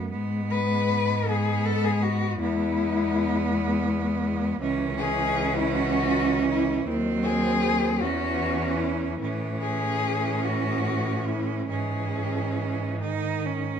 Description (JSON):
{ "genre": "classical, lyrical piece for cello ensemble", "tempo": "45-56 BPM (dotted quarters)", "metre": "6/8", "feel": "rubato", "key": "E major, C# minor from 4.6 s", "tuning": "A4 = 440 Hz", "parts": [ { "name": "clear cello", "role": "second line", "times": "0.0-13.8 s", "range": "B3 to D#4", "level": "-30 LUFS", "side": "right 7 dB", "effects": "none" }, { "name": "warm cello", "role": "accompaniment", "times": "0.0-13.8 s", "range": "D#3 to G#3", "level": "-30 LUFS", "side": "left 2 dB", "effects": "none" }, { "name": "rich cello", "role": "bass", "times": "0.0-13.8 s", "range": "C#2 to A2", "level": "-28 LUFS", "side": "right 2 dB", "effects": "none" }, { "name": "warm cello", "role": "melody", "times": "0.5-13.0 s", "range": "E4 to B4", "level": "-28 LUFS", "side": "left 6 dB", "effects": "none" } ], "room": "light reverb", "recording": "minimal, uncompressed stereo recording", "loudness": "-23 LUFS", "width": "side -8 dB against mid", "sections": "0.0-13.8 A section", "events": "none", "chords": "0.1 G#m; 2.4 E; 4.6 C#m; 6.9 G#7/D#; 8.0 C#m/E; 9.2 Amaj7; 11.7 C#m/G#; 13.0 G#5" }